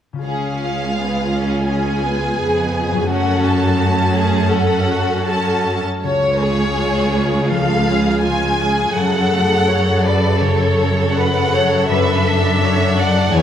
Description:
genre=cinematic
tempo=82 BPM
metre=4/4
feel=uneven beats, rubato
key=unclear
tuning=A4 = 443 Hz
part: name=concert harp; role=arpeggios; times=0.1-13.4 s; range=E2 to G#5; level=-23 LUFS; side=left 6 dB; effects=none
part: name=warm symphonic violin section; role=second line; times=0.2-13.4 s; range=E#4 to A5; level=-21 LUFS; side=left 1 dB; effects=none
part: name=rich studio viola section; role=accompaniment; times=0.2-13.4 s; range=C#3 to A4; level=-21 LUFS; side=right 1 dB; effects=none
part: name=warm symphonic cello section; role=bass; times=0.2-13.4 s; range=C#2 to F#2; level=-19 LUFS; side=right 2 dB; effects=none
part: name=rich studio violin section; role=melody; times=6.0-13.4 s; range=C#5 to G#5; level=-20 LUFS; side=left 1 dB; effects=none
room=wet scoring stage reverb, RT60 2.0 s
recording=none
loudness=-14 LUFS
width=side -9 dB against mid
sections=0.2-6.0 A section; 6.0-13.4 B section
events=none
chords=0.2 C#; 3.1 F#m; 6.0 C#; 9.0 F#m; 11.9 Dadd9/F#

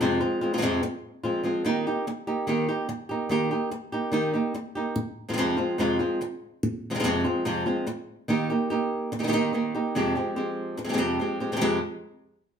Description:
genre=flamenco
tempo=144 BPM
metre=4/4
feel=straight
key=F minor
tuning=A4 = 440 Hz
part: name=flamenco guitar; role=solo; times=0.0-11.8 s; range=F2 to G4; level=-24 LUFS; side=equal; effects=none
room=wet large studio reverb, RT60 0.8 s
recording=band playing live in one room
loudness=-25 LUFS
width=side -7 dB against mid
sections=0.0-11.6 A section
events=none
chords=0.0 Fm; 1.7 Eb; 5.0 Fm; 8.3 Eb; 10.0 Fmadd9

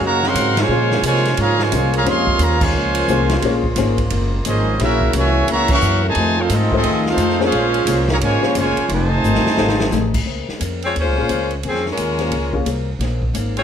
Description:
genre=jazz, big band swing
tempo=176 BPM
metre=4/4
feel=swing 63% on 8ths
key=Bb minor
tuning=A4 = 444 Hz
part: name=warm trombone section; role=second line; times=0.0-10.1 s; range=C3 to F4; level=-22 LUFS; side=right 5 dB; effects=none
part: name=picked steel-string acoustic guitar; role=accompaniment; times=0.0-13.6 s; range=Eb3 to C5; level=-26 LUFS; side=left 6 dB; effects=none
part: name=warm baby grand piano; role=accompaniment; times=0.0-12.7 s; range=A3 to F5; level=-23 LUFS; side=left 6 dB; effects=none
part: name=bright saxophone section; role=sustained chords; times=0.0-10.2 s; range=Bb2 to Gb4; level=-27 LUFS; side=left 1 dB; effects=none
part: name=upright bass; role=bass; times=0.0-13.6 s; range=F1 to C3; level=-21 LUFS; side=equal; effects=none
part: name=bright trumpet section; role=melody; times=0.1-10.1 s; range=C4 to Db6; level=-19 LUFS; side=right 1 dB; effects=plate reverb
part: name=swinging big-band drum kit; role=drums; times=0.2-13.6 s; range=crash cymbal, hi-hat, kick drum, ride cymbal, snare drum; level=-24 LUFS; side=equal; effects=none
part: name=bright saxophone section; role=melody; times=10.8-13.6 s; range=F3 to Db5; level=-20 LUFS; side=left 2 dB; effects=plate reverb
room=moderate large studio reverb, RT60 1.0 s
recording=none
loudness=-15 LUFS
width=side -8 dB against mid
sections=0.0-10.3 A section; 10.3-13.6 B section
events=band accent 0.5, 2.6, 5.6; drum fill 9.2-9.9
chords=0.0 Ebm9; 0.7 Bbm9; 4.8 Gb7; 6.2 F7#9; 7.5 Bbm9; 8.9 F7#9; 10.3 Bbm9

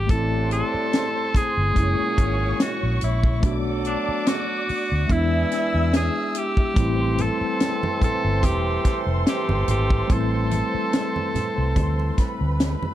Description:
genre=lush 1970s-style soul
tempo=72 BPM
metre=4/4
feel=swing 54% on 16ths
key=A minor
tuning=A4 = 440 Hz
part: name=bright tenor saxophone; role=melody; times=0.0-12.6 s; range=D4 to A4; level=-26 LUFS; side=equal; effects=none
part: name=mellow tine electric piano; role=accompaniment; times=0.0-12.9 s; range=G3 to F#4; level=-28 LUFS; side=left 2 dB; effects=medium stereo tremolo
part: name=vintage muted fingered electric bass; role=bass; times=0.0-12.7 s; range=E1 to E2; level=-23 LUFS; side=equal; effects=none
part: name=muted studio string section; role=second line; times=0.1-12.9 s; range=B4 to E6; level=-32 LUFS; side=right 1 dB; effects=none
part: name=warm horn section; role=stabs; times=0.1-12.9 s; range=A2 to A4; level=-32 LUFS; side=right 4 dB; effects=none
part: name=tight funk drum kit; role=drums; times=0.1-12.8 s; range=hi-hat, kick drum, snare drum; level=-22 LUFS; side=equal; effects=none
part: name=congas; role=percussion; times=6.8-12.9 s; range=none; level=-30 LUFS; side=right 3 dB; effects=none
room=small room reverb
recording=dark, warm production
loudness=-20 LUFS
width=side -13 dB against mid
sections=0.1-12.9 A section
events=none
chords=0.1 Am7; 1.8 F#7; 3.4 Bm7; 5.1 E7; 6.8 Am7

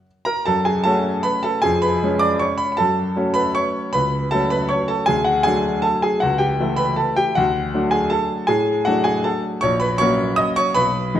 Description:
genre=classical, piano waltz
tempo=157 BPM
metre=3/4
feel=uneven beats, rubato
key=F# minor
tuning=A4 = 444 Hz
part: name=clear grand piano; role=solo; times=0.0-11.2 s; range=A#1 to D#6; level=-17 LUFS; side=equal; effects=none
room=wet recital hall reverb, RT60 1.5 s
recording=none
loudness=-17 LUFS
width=side -10 dB against mid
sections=0.5-11.2 A section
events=none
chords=0.5 F#m; 1.6 C#7/E#; 2.8 F#m; 5.1 D; 6.2 A7/C#; 7.4 D; 9.6 F#/A#

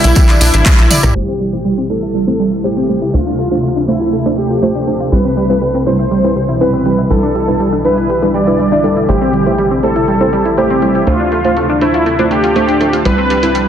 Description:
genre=progressive house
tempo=121 BPM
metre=4/4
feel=straight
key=A minor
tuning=A4 = 445 Hz
part: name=soft supersaw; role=melody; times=0.0-13.7 s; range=E4 to D5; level=-17 LUFS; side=equal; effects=digital delay
part: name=shimmering ambient pad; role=sustained chords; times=0.0-13.7 s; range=B2 to A4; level=-19 LUFS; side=equal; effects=chorus, built-in reverb, sidechain pumping
part: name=analog pluck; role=arpeggios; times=0.0-13.6 s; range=G3 to D5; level=-16 LUFS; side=right 1 dB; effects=chorus, sidechain pumping, digital delay
part: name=tight sequencer bass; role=bass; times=0.0-13.7 s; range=A1 to D2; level=-20 LUFS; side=equal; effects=sidechain pumping
part: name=big-room dance drum kit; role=drums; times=0.0-13.7 s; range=handclaps, hi-hat, rim click, toms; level=-18 LUFS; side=equal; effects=overdrive, sidechain pumping on hats, studio reverb, sidechain pumping on toms
part: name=tambourine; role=percussion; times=0.1-1.1 s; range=none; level=-21 LUFS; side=right 3 dB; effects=none
part: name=electronic kick drum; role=drums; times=0.2-0.8 s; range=none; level=-9 LUFS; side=equal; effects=studio reverb
part: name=deep mellow chord stab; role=stabs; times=1.2-13.5 s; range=G3 to E5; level=-16 LUFS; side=right 1 dB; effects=chorus, sidechain pumping, digital delay
part: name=downlifter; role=sound effects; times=1.4-5.1 s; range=none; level=-38 LUFS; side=equal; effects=none
room=moderate digital room reverb, RT60 0.9 s, digital ambience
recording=dense, heavily limited modern master, low-pass filter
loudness=-10 LUFS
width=side -9 dB against mid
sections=0.0-1.2 A section; 1.2-13.7 B section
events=band accent 0.7; drum fill 0.8-1.2; filter sweep on synth pluck 1.2-13.7; filter sweep on ambient pad 1.2-13.7; filter sweep 1.2-13.7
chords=0.0 Em7; 1.2 Am7; 3.1 Dm7; 5.1 Cmaj7; 7.1 Em7/B; 9.1 Am7; 11.1 Dm7; 13.1 Cmaj7

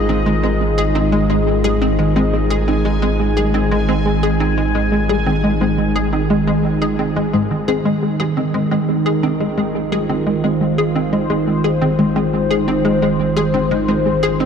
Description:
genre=ambient, sequencer-driven space music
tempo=87 BPM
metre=4/4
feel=straight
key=Ab major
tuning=A4 = 440 Hz
part: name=sweeping resonant pad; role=sustained chords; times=0.0-14.5 s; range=Eb3 to C5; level=-18 LUFS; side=equal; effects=chorus
part: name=hollow square pluck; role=riff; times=0.0-14.5 s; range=Ab3 to Ab4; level=-20 LUFS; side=left 2 dB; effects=analog chorus, analog delay
part: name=round analog bass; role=bass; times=0.0-14.5 s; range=Ab1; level=-23 LUFS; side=equal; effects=none
part: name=bubbling stepped-filter texture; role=texture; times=0.0-7.9 s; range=Eb4 to Ab5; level=-27 LUFS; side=left 1 dB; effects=chorus, built-in reverb
part: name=wide unison pluck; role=arpeggios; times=0.1-14.5 s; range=Ab2 to Ab4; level=-22 LUFS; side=right 3 dB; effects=auto-pan, analog delay
room=wet huge ambient reverb, RT60 8.1 s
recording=dark, warm production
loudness=-14 LUFS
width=side -7 dB against mid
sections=0.0-7.9 A section; 7.9-14.5 A section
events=fade-in on analog synth bass 7.9-14.5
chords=0.0 Ab6

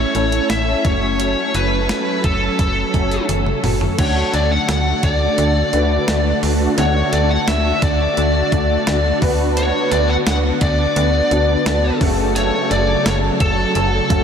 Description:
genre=1980s-style pop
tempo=86 BPM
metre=4/4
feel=straight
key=unclear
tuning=A4 = 440 Hz
part: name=bluesy overdriven lead guitar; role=melody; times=0.0-14.2 s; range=A4 to F#5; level=-20 LUFS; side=left 1 dB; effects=distortion
part: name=dark concert grand piano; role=accompaniment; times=0.0-14.2 s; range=C#3 to F#5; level=-22 LUFS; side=equal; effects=ensemble chorus
part: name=soft string machine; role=sustained chords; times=0.0-14.2 s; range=C#3 to A4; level=-23 LUFS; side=equal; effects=ensemble chorus
part: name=slap-like FM bass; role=bass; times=0.0-14.2 s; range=F#1 to D2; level=-20 LUFS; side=equal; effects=none
part: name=clean 12-bit digital drum machine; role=drums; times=0.1-14.2 s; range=crash cymbal, hi-hat, kick drum, snare drum, toms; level=-23 LUFS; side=equal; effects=none
part: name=mellow synth brass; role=stabs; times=5.4-13.9 s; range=C#4 to B4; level=-28 LUFS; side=equal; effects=none
room=wet huge ambient reverb, RT60 7.9 s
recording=dreamy mix soaked in reverb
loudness=-14 LUFS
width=side -7 dB against mid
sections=0.0-4.0 A section; 4.0-14.2 B section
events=drum fill 3.3-4.0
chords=0.0 A; 0.8 F#m; 4.0 D; 9.2 Bm/D; 12.0 F#m

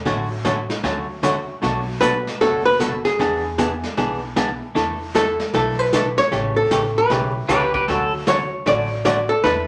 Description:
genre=country, western swing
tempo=153 BPM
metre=4/4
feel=swing 64% on 8ths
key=unclear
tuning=A4 = 439 Hz
part: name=archtop guitar, miked and amplified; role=accompaniment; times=0.1-9.7 s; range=B2 to A4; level=-24 LUFS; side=equal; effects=none
part: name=upright bass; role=bass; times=0.1-9.7 s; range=F#1 to E2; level=-32 LUFS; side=equal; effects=none
part: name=vintage brush drum kit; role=drums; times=0.1-9.7 s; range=brushed snare drum, hi-hat, kick drum, snare drum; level=-31 LUFS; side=equal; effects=none
part: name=archtop guitar, miked and amplified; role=melody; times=2.0-9.7 s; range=G#4 to D5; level=-21 LUFS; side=equal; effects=none
part: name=pedal steel guitar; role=second line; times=7.5-8.1 s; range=G4 to B4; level=-23 LUFS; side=equal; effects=none
room=wet club reverb, RT60 0.8 s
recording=vinyl crackle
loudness=-20 LUFS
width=mono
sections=0.0-9.7 A section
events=none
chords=0.1 Dmaj7/A; 1.6 Bm7; 3.2 E7; 4.8 E7sus4; 6.3 A7; 7.9 Dmaj7

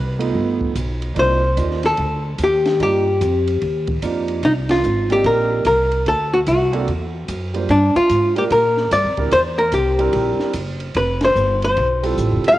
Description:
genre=jazz, small-group swing and bop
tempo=147 BPM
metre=4/4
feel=swing 65% on 8ths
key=C dorian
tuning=A4 = 439 Hz
part: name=archtop guitar, miked and amplified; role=melody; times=0.0-12.6 s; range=D4 to F5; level=-17 LUFS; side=left 1 dB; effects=none
part: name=upright bass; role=bass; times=0.0-12.6 s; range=E1 to Bb2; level=-22 LUFS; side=equal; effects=none
part: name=warm concert grand piano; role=accompaniment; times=0.2-12.6 s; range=G3 to C5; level=-24 LUFS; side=right 5 dB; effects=none
part: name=compact cocktail drum kit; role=drums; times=0.2-12.5 s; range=hi-hat, kick drum, ride cymbal, snare drum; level=-30 LUFS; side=right 1 dB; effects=cassette tape
room=moderate lush hall reverb, RT60 2.2 s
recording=home recording on cassette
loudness=-16 LUFS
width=side -15 dB against mid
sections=0.0-4.4 A section; 4.4-12.6 B section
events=band accent 4.6, 11.2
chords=0.3 Gaug7; 1.2 Cm11; 4.4 Cm9; 6.1 D7b13; 7.7 Gm7; 9.3 C7; 11.0 Fmaj9

